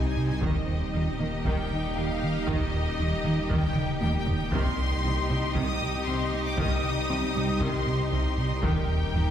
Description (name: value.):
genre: cinematic, hybrid orchestral and electronic film score.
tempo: 117 BPM.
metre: 4/4.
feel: straight.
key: C minor.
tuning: A4 = 440 Hz.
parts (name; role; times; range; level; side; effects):
clear symphonic violin section; melody; 0.0-9.3 s; Eb5 to Eb6; -34 LUFS; left 3 dB; none.
clear symphonic violin section; second line; 0.0-9.3 s; G4 to Eb5; -36 LUFS; left 1 dB; none.
rich symphonic viola section; accompaniment; 0.0-9.3 s; Eb3 to Eb4; -37 LUFS; right 2 dB; none.
bowed-like drone; sustained chords; 0.0-9.3 s; G3 to C5; -36 LUFS; right 2 dB; built-in reverb.
mellow French horn section; sustained chords; 0.0-9.3 s; G3 to Eb4; -37 LUFS; left 3 dB; none.
tight sequenced synth; arpeggios; 0.0-9.3 s; C3 to Eb4; -38 LUFS; equal; none.
smooth gliding synth bass; riff; 0.0-9.3 s; C2 to Eb3; -30 LUFS; right 1 dB; none.
phased detuned saw bass; bass; 0.0-9.3 s; Eb1 to C2; -34 LUFS; equal; phaser.
rich symphonic cello section; bass; 0.4-9.2 s; C3 to Eb3; -34 LUFS; right 1 dB; none.
taiko ensemble; drums; 0.4-9.3 s; none; -32 LUFS; equal; none.
room: wet scoring stage reverb, RT60 1.6 s.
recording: heard from further back in the room.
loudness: -24 LUFS.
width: side -10 dB against mid.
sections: 0.0-9.3 A section.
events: drum fill 3.8-4.5.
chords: 0.4 Eb; 4.5 Cm; 8.6 Eb.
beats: | 0.42 0.94 1.45 1.96 | 2.48 2.99 3.50 4.01 | 4.53 5.04 5.55 6.07 | 6.58 7.09 7.61 8.12 | 8.63 9.14.